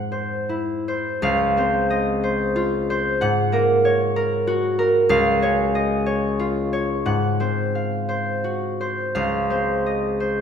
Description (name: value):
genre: classical, solo harp piece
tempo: 53-65 BPM (dotted quarters)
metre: 6/8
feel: rubato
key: Db major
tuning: A4 = 439 Hz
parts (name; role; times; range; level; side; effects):
- concert harp; solo; 0.0-10.4 s; Db2 to Ab5; -19 LUFS; equal; none
room: wet scoring stage reverb, RT60 1.8 s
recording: recorded in a church or concert hall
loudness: -19 LUFS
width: side -7 dB against mid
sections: 0.0-1.2 A section; 1.2-10.4 B section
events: none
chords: 0.0 Abaug7; 1.2 Dbmaj9; 3.2 Ab11; 5.1 Dbadd9; 7.1 Ab6; 9.1 Dbmaj9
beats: 0.12 | 1.23 2.24 | 3.21 4.16 | 5.09 6.06 | 7.06 8.09 | 9.15 10.20